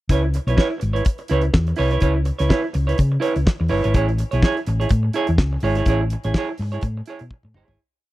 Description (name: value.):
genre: disco.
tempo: 125 BPM.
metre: 4/4.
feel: swing 56% on 16ths.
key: unclear.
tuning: A4 = 438 Hz.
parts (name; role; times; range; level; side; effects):
semi-hollow electric guitar; accompaniment; 0.1-7.8 s; E4 to C#5; -23 LUFS; right 3 dB; none.
hollow-body short-scale fingered electric bass; bass; 0.1-7.8 s; G1 to C#3; -20 LUFS; equal; none.
damped 70s drum kit; drums; 0.1-7.8 s; hi-hat, kick drum, snare drum, toms; -18 LUFS; equal; none.
room: small room ambience.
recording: dry, close 1970s-style studio recording.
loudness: -18 LUFS.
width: side -17 dB against mid.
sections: 0.1-7.8 pre-chorus.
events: fade-out 5.9-7.8; drum fill 7.3-7.8.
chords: 0.1 C#m7; 3.9 Amaj7.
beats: | 0.09 0.58 1.06 1.54 | 2.02 2.50 2.98 3.47 | 3.95 4.43 4.91 5.39 | 5.87 6.35 6.83 7.31.